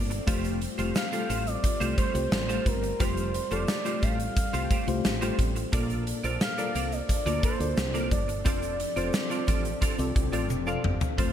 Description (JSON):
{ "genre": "1980s-style pop", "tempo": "88 BPM", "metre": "4/4", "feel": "straight", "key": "unclear", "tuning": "A4 = 440 Hz", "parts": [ { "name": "mellow FM electric piano", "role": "accompaniment", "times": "0.0-11.3 s", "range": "Bb2 to F5", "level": "-33 LUFS", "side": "left 3 dB", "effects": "chorus, tremolo" }, { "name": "string machine, violas", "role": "sustained chords", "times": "0.0-11.3 s", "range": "F3 to A4", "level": "-37 LUFS", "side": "equal", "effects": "ensemble chorus" }, { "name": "woody fretless electric bass", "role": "bass", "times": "0.0-11.3 s", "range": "F1 to D2", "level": "-32 LUFS", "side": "equal", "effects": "none" }, { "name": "twelve-string electric guitar", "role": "riff", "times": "0.1-11.3 s", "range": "A3 to D5", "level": "-35 LUFS", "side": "right 4 dB", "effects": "ensemble chorus" }, { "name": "big rock drum kit", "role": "drums", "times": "0.1-11.3 s", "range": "hi-hat, kick drum, snare drum, toms", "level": "-29 LUFS", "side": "equal", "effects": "gated reverb" }, { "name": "egg shaker", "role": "percussion", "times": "0.1-11.2 s", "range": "none", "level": "-47 LUFS", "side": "left 13 dB", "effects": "none" }, { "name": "expressive synth lead", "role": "melody", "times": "1.0-10.5 s", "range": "Bb4 to F5", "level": "-34 LUFS", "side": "right 1 dB", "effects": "chorus, ping-pong delay" } ], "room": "light reverb, small room ambience", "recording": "bright 1980s-style digital production", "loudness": "-25 LUFS", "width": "side -10 dB against mid", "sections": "0.0-11.2 A section", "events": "drum fill 10.5-11.2", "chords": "0.3 Fadd9; 5.7 Bbmaj7; 8.5 F6" }